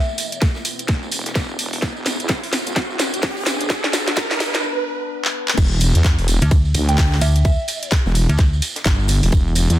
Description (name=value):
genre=bass house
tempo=128 BPM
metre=4/4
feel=swing 60% on 16ths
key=E minor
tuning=A4 = 441 Hz
part: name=soft synth bell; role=melody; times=0.0-0.4, 6.9-7.9 s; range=E5 to G5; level=-28 LUFS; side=right 3 dB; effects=chorus, dub echo
part: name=dark analog pad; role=sustained chords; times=0.0-9.8 s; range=B3 to B4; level=-32 LUFS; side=left 2 dB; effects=lush chorus, sidechain pumping
part: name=riser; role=sound effects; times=0.2-4.6 s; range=none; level=-28 LUFS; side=right 2 dB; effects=none
part: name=tambourine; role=percussion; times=0.1-9.8 s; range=none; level=-30 LUFS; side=right 4 dB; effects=none
part: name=crisp fusion drum kit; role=drums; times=0.2-9.7 s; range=hi-hat, snare drum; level=-34 LUFS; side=left 4 dB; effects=none
part: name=garage drum kit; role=drums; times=0.2-9.8 s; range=crash cymbal, handclaps, hi-hat, ride cymbal, snare drum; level=-23 LUFS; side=equal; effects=none
part: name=electronic kick drum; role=drums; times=0.4-9.4 s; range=none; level=-17 LUFS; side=equal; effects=none
part: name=wobble bass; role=bass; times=0.9-9.8 s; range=E1 to E2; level=-19 LUFS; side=equal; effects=chorus, sidechain pumping, high-pass filter
part: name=metallic FM bass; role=bass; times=6.4-8.6 s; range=D2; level=-16 LUFS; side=equal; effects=tube saturation, sidechain pumping
room=light reverb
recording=dense, heavily limited modern master, high-pass filter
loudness=-16 LUFS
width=side -14 dB against mid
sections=0.0-5.6 A section; 5.6-9.8 B section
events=build-up 0.0-5.6; drum fill 0.0-4.6, 5.2-5.6; filter sweep on analog synth pad 0.0-5.6; riser 0.2-4.6; break 4.6-5.6; drop 5.6-9.8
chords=0.0 E5